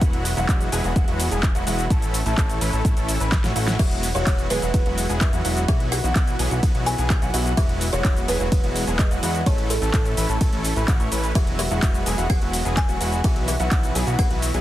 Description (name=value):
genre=EDM, festival progressive house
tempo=127 BPM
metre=4/4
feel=straight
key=E major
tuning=A4 = 437 Hz
part: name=lush unison pad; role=sustained chords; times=0.0-14.6 s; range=F#3 to F#5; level=-34 LUFS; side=equal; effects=chorus, sidechain pumping
part: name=dark baby grand piano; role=arpeggios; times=0.0-14.6 s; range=F#5 to C#6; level=-32 LUFS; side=equal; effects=sidechain pumping, dub echo
part: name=supersaw chords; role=riff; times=0.0-14.6 s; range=E3 to C#5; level=-28 LUFS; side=equal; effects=sidechain pumping, dub echo
part: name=fat analog bass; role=bass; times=0.0-14.6 s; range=E1 to E2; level=-25 LUFS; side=equal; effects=sidechain pumping
part: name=big-room dance drum kit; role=drums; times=0.0-14.6 s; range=crash cymbal, handclaps, hi-hat, ride cymbal, shaker, snare drum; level=-28 LUFS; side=equal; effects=overdrive
part: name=electronic kick drum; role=drums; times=0.0-14.3 s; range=none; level=-20 LUFS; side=equal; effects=overdrive
part: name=kalimba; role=melody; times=3.8-14.6 s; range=A4 to G#5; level=-30 LUFS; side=equal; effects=dub echo
room=little or no reverb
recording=dense, heavily limited modern master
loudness=-19 LUFS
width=side -14 dB against mid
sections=0.0-14.6 A section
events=drum fill 3.3-3.8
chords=0.0 Eadd9; 1.9 A; 3.8 Eadd9; 5.7 Bsus4; 7.6 Eadd9; 9.5 A; 11.4 Eadd9; 13.2 Bsus4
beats=| 0.01 0.49 0.96 1.43 | 1.90 2.38 2.85 3.32 | 3.79 4.27 4.74 5.21 | 5.68 6.16 6.63 7.10 | 7.57 8.05 8.52 8.99 | 9.46 9.94 10.41 10.88 | 11.35 11.83 12.30 12.77 | 13.24 13.71 14.19